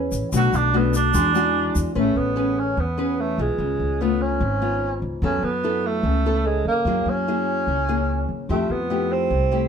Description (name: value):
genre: bossa nova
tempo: 147 BPM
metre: 4/4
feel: straight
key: A major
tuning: A4 = 440 Hz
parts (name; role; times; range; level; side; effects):
- nylon-string guitar; accompaniment; 0.0-9.7 s; G#2 to B4; -24 LUFS; left 3 dB; none
- upright bass; bass; 0.0-9.7 s; G#1 to F#2; -25 LUFS; equal; none
- tube shaker; percussion; 0.1-2.0 s; none; -34 LUFS; left 5 dB; none
- breathy tenor saxophone; melody; 0.4-9.7 s; G#3 to F#4; -23 LUFS; right 3 dB; none
room: moderate studio reverb, RT60 0.8 s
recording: minimal, uncompressed stereo recording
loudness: -19 LUFS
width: side -7 dB against mid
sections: 0.0-2.0 A section; 2.0-9.7 B section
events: tenor saxophone solo 0.0-2.0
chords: 0.3 Bm7; 1.1 E9; 2.0 Amaj9; 3.6 C#7b13; 5.2 F#m7; 6.9 F#9; 8.5 Fmaj9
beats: | 0.32 0.73 1.14 1.55 | 1.96 2.36 2.77 3.18 | 3.59 4.00 4.41 4.82 | 5.22 5.63 6.04 6.45 | 6.86 7.27 7.67 8.08 | 8.49 8.90 9.31